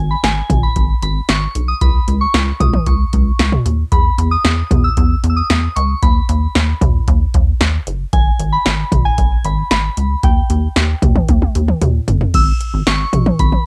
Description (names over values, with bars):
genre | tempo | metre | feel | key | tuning
synth-pop | 114 BPM | 4/4 | straight | G# minor | A4 = 440 Hz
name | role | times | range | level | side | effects
soft synth bell | melody | 0.0-13.7 s | G5 to E6 | -23 LUFS | equal | chorus, phaser, cassette tape, tape echo
rubbery square bass | bass | 0.0-13.6 s | F#1 to E2 | -19 LUFS | equal | tube saturation
electro analog drum machine | drums | 0.2-13.6 s | crash cymbal, hi-hat, kick drum, snare drum, toms | -17 LUFS | equal | cassette tape
room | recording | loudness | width
light reverb | home recording on cassette | -15 LUFS | mono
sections
0.0-12.3 A section; 12.3-13.7 B section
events
drum fill 11.3-12.3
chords
0.0 G#m; 1.8 N.C.; 3.9 C#madd9 (rootless); 6.0 B/D#; 8.1 G#m; 10.2 D#; 12.3 N.C.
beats
0.24 0.76 1.29 | 1.82 2.34 2.87 3.40 | 3.92 4.45 4.97 5.50 | 6.03 6.55 7.08 7.61 | 8.13 8.66 9.18 9.71 | 10.24 10.76 11.29 11.82 | 12.34 12.87 13.39